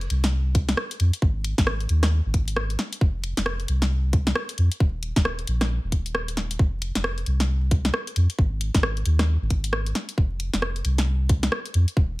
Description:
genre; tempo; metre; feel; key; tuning
UK garage, two-step garage; 134 BPM; 4/4; swing 61% on 16ths; F minor; A4 = 440 Hz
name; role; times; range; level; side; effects
soft dub sub bass; bass; 0.0-12.2 s; Eb1 to F2; -23 LUFS; equal; none
garage drum kit; drums; 0.0-11.9 s; hi-hat, rim click, snare drum; -26 LUFS; equal; studio ambience
electronic kick drum; drums; 0.5-12.1 s; none; -20 LUFS; equal; studio ambience
room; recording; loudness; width
little or no reverb; vinyl crackle; -21 LUFS; side -20 dB against mid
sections
0.0-12.2 A section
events
none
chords
none

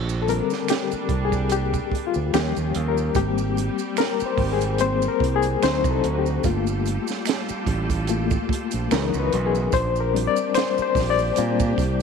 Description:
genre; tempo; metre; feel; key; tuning
R&B, neo-soul; 73 BPM; 4/4; swing 55% on 16ths; unclear; A4 = 439 Hz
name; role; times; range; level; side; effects
clear studio string section; sustained chords; 0.0-12.0 s; Db3 to A4; -33 LUFS; right 3 dB; none
fingered electric bass; bass; 0.0-12.0 s; G1 to Bb2; -25 LUFS; right 2 dB; none
maracas and finger snaps; percussion; 0.1-12.0 s; none; -36 LUFS; right 16 dB; none
bright reed electric piano; accompaniment; 0.2-12.0 s; D3 to D5; -23 LUFS; left 9 dB; tremolo
compact cocktail drum kit; drums; 0.3-12.0 s; hi-hat, kick drum, snare drum; -27 LUFS; right 7 dB; none
room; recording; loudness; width
light reverb, small room ambience; 1960s-style stereo with parts hard left and right; -20 LUFS; side -6 dB against mid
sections
0.0-12.0 A section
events
reed electric piano solo 0.0-12.0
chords
0.0 Bb6; 2.3 Eb9; 3.2 Abmaj9; 5.6 D7b9; 6.4 Gm9; 8.9 Dbm11; 9.7 Bb69

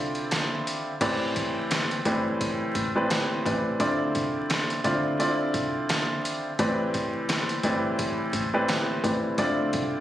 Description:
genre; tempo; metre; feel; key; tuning
hip hop, boom-bap hip-hop; 86 BPM; 4/4; swing 59% on 16ths; A minor; A4 = 440 Hz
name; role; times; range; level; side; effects
warm baby grand piano; accompaniment; 0.0-10.0 s; A2 to D5; -25 LUFS; equal; high-pass filter, low-pass filter
deep dub fingered electric bass; bass; 0.0-9.9 s; G1 to D2; -35 LUFS; equal; none
trip hop sampler-style drum kit; drums; 0.1-9.9 s; crash cymbal, handclaps, hi-hat, kick drum, snare drum; -30 LUFS; equal; none
room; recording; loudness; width
light reverb, digital ambience; recorded on a phone in the room, studio reverb, vinyl crackle, compression; -24 LUFS; side -12 dB against mid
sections
0.0-1.0 A section; 1.0-10.0 B section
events
break 0.0-1.0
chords
0.0 Dm7; 1.0 Am11; 3.8 Dm7; 6.6 Am11; 9.4 Dm7

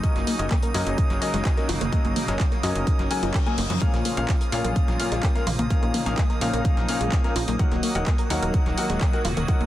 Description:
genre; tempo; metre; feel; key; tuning
progressive house; 127 BPM; 4/4; straight; Bb minor; A4 = 441 Hz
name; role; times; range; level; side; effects
filtered supersaw swell; sustained chords; 0.0-9.7 s; Db3 to Gb4; -32 LUFS; right 2 dB; sidechain pumping
tight sequenced synth; arpeggios; 0.0-9.7 s; F3 to Bb4; -31 LUFS; left 1 dB; chorus, sidechain pumping, tape echo
clear baby grand piano; stabs; 0.0-9.7 s; Bb2 to Ab5; -28 LUFS; left 3 dB; sidechain pumping, tape echo
cloth-damped thuddy drum kit; drums; 0.0-9.6 s; hi-hat, shaker, snare drum; -45 LUFS; equal; none
electronic kick drum; drums; 0.0-9.6 s; none; -23 LUFS; equal; none
pop drum kit; drums; 0.0-9.7 s; handclaps, hi-hat; -33 LUFS; right 1 dB; sidechain pumping on hats
drifting glass-harmonics texture; texture; 0.0-9.7 s; Eb6; -37 LUFS; right 3 dB; chorus, built-in reverb, sidechain pumping
tight sequencer bass; bass; 0.2-9.7 s; Eb1 to Bb2; -28 LUFS; equal; sidechain pumping
electronic congas and toms; percussion; 0.9-9.5 s; none; -34 LUFS; left 1 dB; sidechain pumping on perc, sidechain pumping on toms
reverse cymbal; sound effects; 3.1-3.8 s; none; -39 LUFS; left 6 dB; none
room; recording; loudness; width
small room ambience; dense, heavily limited modern master; -21 LUFS; side -14 dB against mid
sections
0.0-9.7 A section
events
filter sweep on synth arpeggio sound 0.0-9.7; reverse cymbal 3.1-3.8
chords
0.0 Gb6; 3.8 Bbm; 7.6 Ebm

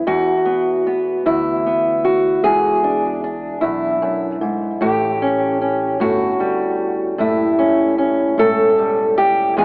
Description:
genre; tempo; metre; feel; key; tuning
acoustic country blues, solo or duo; 50 BPM (dotted quarters); 12/8; straight; unclear; A4 = 440 Hz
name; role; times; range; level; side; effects
fingerpicked old ladder-braced acoustic guitar; melody; 0.0-9.6 s; E2 to A4; -15 LUFS; equal; tape echo
upright bass; bass; 0.0-9.6 s; E1 to E2; -33 LUFS; equal; none
room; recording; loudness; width
moderate lush hall reverb, RT60 2.5 s; home recording on cassette, AM radio sound; -15 LUFS; side -32 dB against mid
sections
0.0-9.6 A section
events
none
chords
0.0 E7; 4.8 A7

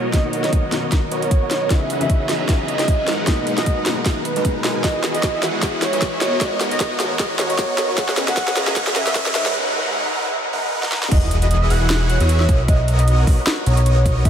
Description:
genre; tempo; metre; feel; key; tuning
future bass; 153 BPM; 4/4; swing 56% on 16ths, half-time; unclear; A4 = 437 Hz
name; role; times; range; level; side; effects
warm velvety synth lead; melody; 0.0-14.3 s; B4 to F#5; -24 LUFS; right 1 dB; chorus, cassette tape, sidechain pumping, tape echo
felt-muted upright piano; accompaniment; 0.0-4.9 s; A#2 to D#5; -28 LUFS; left 4 dB; sidechain pumping, tape echo
ethereal airy pad; sustained chords; 0.0-9.5 s; D#3 to A#5; -35 LUFS; equal; ensemble chorus, built-in reverb, sidechain pumping
concert harp; arpeggios; 0.0-0.6, 4.8-14.3 s; F#4 to F#5; -33 LUFS; left 2 dB; none
supersaw chords; riff; 0.0-14.3 s; E3 to A#5; -24 LUFS; right 1 dB; phaser, cassette tape, sidechain pumping, low-pass filter, tape echo
fat analog bass; bass; 0.0-14.3 s; E1 to G#2; -22 LUFS; equal; sidechain pumping, high-pass filter
riser and sub drop; sound effects; 0.0-12.7 s; none; -32 LUFS; equal; none
electronic kick drum; drums; 0.1-14.3 s; none; -18 LUFS; equal; none
trap drum kit; drums; 0.1-14.3 s; crash cymbal, hi-hat, snare drum; -23 LUFS; equal; high-pass filter on snare, high-pass filter on hats, high-pass filter on cymbals
airy dreamy lead; arpeggios; 11.1-14.3 s; D#6 to F#6; -31 LUFS; equal; chorus, sidechain pumping, tape echo
room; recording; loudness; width
moderate huge ambient reverb, RT60 7.9 s; dreamy mix soaked in reverb, high-pass filter; -16 LUFS; side -9 dB against mid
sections
0.0-11.1 A section; 11.1-14.3 B section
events
build-up 0.0-11.1; drum fill 0.0-9.5, 10.8; filter sweep on supersaw synth 0.0-11.1; filter sweep 0.0-11.1; break 9.5-11.1; drop 11.1-14.3; impact 11.1-12.7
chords
0.1 Bmaj7; 1.7 C#m11; 3.3 G#m9; 4.8 Emaj9; 6.4 Bmaj7; 8.0 C#m11; 9.5 G#m9; 11.1 Emaj9; 12.7 Bmaj7

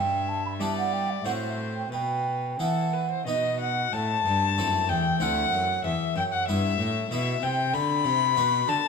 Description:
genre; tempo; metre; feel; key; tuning
classical, baroque-style sonata movement with continuo; 88-96 BPM; 3/4; rubato; E minor; A4 = 440 Hz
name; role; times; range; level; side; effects
dark violin; melody; 0.0-8.9 s; A4 to B5; -27 LUFS; left 9 dB; none
mellow hollow baroque flute; second line; 0.0-8.9 s; D#5 to B5; -30 LUFS; right 5 dB; none
harpsichord; accompaniment; 0.0-8.9 s; D2 to F#4; -31 LUFS; left 2 dB; none
rich cello; bass; 0.0-8.8 s; D2 to G3; -31 LUFS; right 1 dB; none
room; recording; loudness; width
moderate recital hall reverb, RT60 1.6 s; none; -24 LUFS; side -5 dB against mid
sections
0.0-3.9 A section; 3.9-8.9 B section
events
none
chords
0.0 Em/G; 1.2 F#dim/A; 1.9 Bsus4; 3.3 B; 3.9 Am; 5.8 Em; 7.7 Bm

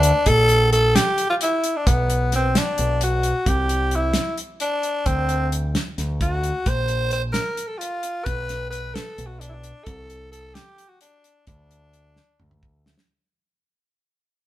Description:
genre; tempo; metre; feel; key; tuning
progressive instrumental, band music in an uneven meter; 262 BPM (eighths); 7/8; straight; unclear; A4 = 439 Hz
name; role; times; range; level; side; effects
growling tenor saxophone; melody; 0.0-12.6 s; B3 to C5; -22 LUFS; equal; none
growling fingered electric bass; bass; 0.0-12.9 s; Bb1 to D2; -23 LUFS; equal; overdrive
damped 70s drum kit; drums; 0.0-13.1 s; hi-hat, kick drum, snare drum, toms; -24 LUFS; equal; none
room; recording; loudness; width
light reverb; band playing live in one room; -19 LUFS; side -14 dB against mid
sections
0.3-13.1 A section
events
fade-out 0.3-13.1; drum fill 12.2-13.1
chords
0.3 Bbmaj7(b5, no3); 1.9 Bm; 3.5 Cadd9; 5.1 D7; 6.7 Bbsus2; 8.3 Bm7; 9.9 Csus2; 11.5 N.C.

